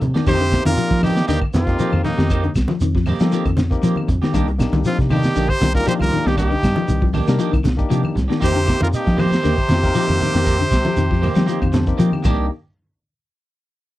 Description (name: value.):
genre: afrobeat.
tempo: 118 BPM.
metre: 4/4.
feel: straight.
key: unclear.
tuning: A4 = 440 Hz.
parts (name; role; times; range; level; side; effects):
clean electric guitar; stabs; 0.0-12.5 s; Eb3 to G4; -27 LUFS; right 6 dB; none.
fingered electric bass; bass; 0.0-12.5 s; Bb1 to F3; -20 LUFS; equal; none.
crunchy breakbeat drum kit; drums; 0.0-12.4 s; crash cymbal, hi-hat, kick drum, snare drum; -22 LUFS; equal; none.
congas; percussion; 0.0-12.4 s; none; -25 LUFS; right 2 dB; none.
shekere; percussion; 0.0-12.4 s; none; -26 LUFS; right 1 dB; none.
semi-hollow electric guitar; arpeggios; 0.2-12.3 s; D3 to G3; -24 LUFS; left 6 dB; none.
brilliant trumpet; melody; 0.3-12.0 s; Eb4 to C5; -23 LUFS; equal; none.
muted trombone section; second line; 0.3-12.0 s; Eb2 to C3; -32 LUFS; left 2 dB; none.
raspy alto saxophone; second line; 0.3-12.0 s; Bb3 to G4; -27 LUFS; right 5 dB; none.
barky tine electric piano; accompaniment; 0.3-12.5 s; Bb3 to A5; -27 LUFS; left 5 dB; none.
claves; percussion; 0.3-12.4 s; none; -39 LUFS; left 6 dB; none.
room: little or no reverb.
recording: dry, close 1970s-style studio recording.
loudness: -15 LUFS.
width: side -15 dB against mid.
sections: 0.0-12.5 A section; 12.5-14.0 B section.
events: tine electric piano fill 11.0-12.5.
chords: 0.3 F9sus4; 4.3 Cm9; 8.4 F9sus4; 12.2 Cm9; 12.5 N.C..